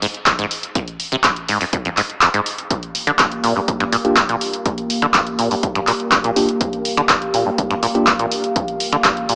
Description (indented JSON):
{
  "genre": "acid house",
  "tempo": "123 BPM",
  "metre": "4/4",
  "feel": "straight",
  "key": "G minor pentatonic",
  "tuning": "A4 = 440 Hz",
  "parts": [
    { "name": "deep acid bass", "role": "riff", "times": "0.0-9.4 s", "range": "F2 to D3", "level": "-24 LUFS", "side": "equal", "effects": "tube saturation, subtle chorus, cassette tape, sidechain pumping, tape echo" },
    { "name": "punchy analog drum machine", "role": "drums", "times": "0.0-9.4 s", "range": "finger snaps, handclaps, hi-hat", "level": "-20 LUFS", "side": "equal", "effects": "none" },
    { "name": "electronic kick drum", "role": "drums", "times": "0.3-9.1 s", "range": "none", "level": "-28 LUFS", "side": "equal", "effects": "none" },
    { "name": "dark analog pad", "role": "sustained chords", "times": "2.7-9.4 s", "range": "Bb3 to F5", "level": "-26 LUFS", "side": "equal", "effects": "chorus, sidechain pumping" },
    { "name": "mellow tine electric piano", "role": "stabs", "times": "4.0-8.1 s", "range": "Bb3 to G4", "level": "-24 LUFS", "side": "equal", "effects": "vintage 12-bit sampler grit, tape echo" }
  ],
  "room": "moderate plate reverb, RT60 1.8 s",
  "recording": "small speaker sound",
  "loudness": "-18 LUFS",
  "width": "mono",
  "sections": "0.0-9.4 A section",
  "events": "kick drops out 2.2-2.7",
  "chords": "0.0 Fm; 2.7 Gm7"
}